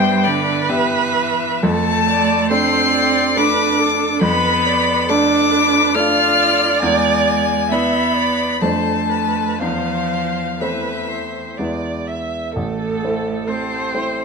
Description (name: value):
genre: classical, slow romantic movement for piano quartet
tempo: 59-71 BPM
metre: 3/4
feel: rubato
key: A minor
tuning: A4 = 440 Hz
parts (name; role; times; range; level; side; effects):
- rich violin; melody; 0.0-14.2 s; D5 to F6; -19 LUFS; left 7 dB; none
- clear cello; second line; 0.0-14.2 s; D3 to F4; -20 LUFS; right 6 dB; none
- rich viola; accompaniment; 0.0-14.2 s; A4 to E5; -22 LUFS; right 4 dB; none
- warm grand piano; accompaniment; 0.0-14.2 s; A1 to E5; -22 LUFS; equal; none
room: moderate large studio reverb, RT60 1.4 s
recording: none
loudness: -15 LUFS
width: side -4 dB against mid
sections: 0.0-12.6 A section; 12.6-14.2 B section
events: none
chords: 0.0 Em/G; 1.6 Dm/F; 6.8 E7; 8.6 F6; 9.6 Am/E; 11.6 E; 12.6 Am